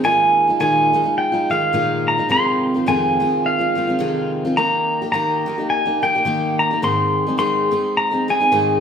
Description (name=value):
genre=acoustic folk duo or small band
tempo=106 BPM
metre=4/4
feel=swing 59% on 8ths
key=unclear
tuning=A4 = 437 Hz
part: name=pedal steel guitar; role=melody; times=0.0-8.8 s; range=F5 to C6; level=-17 LUFS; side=right 1 dB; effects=none
part: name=picked steel-string acoustic guitar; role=accompaniment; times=0.0-8.8 s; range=F2 to Ab4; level=-20 LUFS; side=left 1 dB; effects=none
room=wet large studio reverb, RT60 1.3 s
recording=none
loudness=-16 LUFS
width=side -7 dB against mid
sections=0.0-8.8 A section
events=none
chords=0.0 Bb7sus4; 2.3 Fm7; 4.6 Eb; 6.8 Ab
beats=| 0.04 0.61 1.17 1.74 | 2.30 2.87 3.44 4.00 | 4.57 5.13 5.70 6.26 | 6.83 7.39 7.95 8.52